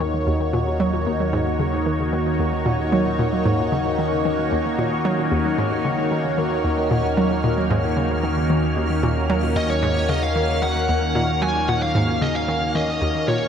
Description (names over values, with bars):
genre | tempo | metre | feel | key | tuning
ambient, sequencer-driven space music | 113 BPM | 4/4 | straight | Eb minor | A4 = 440 Hz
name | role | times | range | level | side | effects
lush unison pad | sustained chords | 0.0-13.5 s | Eb3 to Db5 | -22 LUFS | equal | chorus, phaser
hollow square pluck | riff | 0.0-13.4 s | Eb2 to Gb3 | -24 LUFS | equal | chorus, analog delay
round analog bass | bass | 0.0-13.5 s | Eb2 | -28 LUFS | equal | none
bubbling stepped-filter texture | texture | 0.0-13.5 s | Db4 to F6 | -33 LUFS | right 2 dB | chorus, built-in reverb
bluesy overdriven lead guitar | melody | 9.6-13.5 s | Db5 to Ab5 | -23 LUFS | left 1 dB | distortion, analog delay
room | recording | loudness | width
wet lush hall reverb, RT60 2.7 s | none | -18 LUFS | side -8 dB against mid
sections
0.0-13.5 A section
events
fade-in on synth texture 0.0-13.5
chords
0.0 Ebm7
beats
0.00 0.53 | 1.06 1.60 2.13 2.66 | 3.19 3.72 4.25 4.78 | 5.31 5.84 6.38 6.91 | 7.44 7.97 8.50 9.03 | 9.56 10.09 10.62 11.15 | 11.69 12.22 12.75 13.28